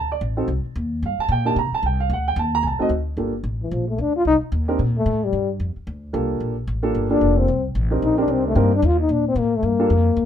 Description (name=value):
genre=jazz, small-group swing and bop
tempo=223 BPM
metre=4/4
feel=swing 60% on 8ths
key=G minor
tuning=A4 = 440 Hz
part: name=dark upright piano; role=accompaniment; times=0.0-9.9 s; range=A3 to Bb5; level=-22 LUFS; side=right 3 dB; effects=none
part: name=upright bass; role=bass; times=0.0-10.3 s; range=F1 to C3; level=-22 LUFS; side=equal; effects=none
part: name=breathy trombone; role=melody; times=3.6-10.3 s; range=E3 to F4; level=-20 LUFS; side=left 4 dB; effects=none
room=moderate club reverb, RT60 0.7 s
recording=minimal, uncompressed stereo recording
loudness=-18 LUFS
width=side -9 dB against mid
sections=0.0-3.2 A section; 3.2-10.3 A section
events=trombone solo 3.2-10.3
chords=0.0 D7(no3); 1.0 Gm; 1.6 Gm11/C; 2.1 D7b9; 3.2 Gm7; 4.2 Cm7; 5.3 Gm7; 7.5 Cm7; 9.6 Gm7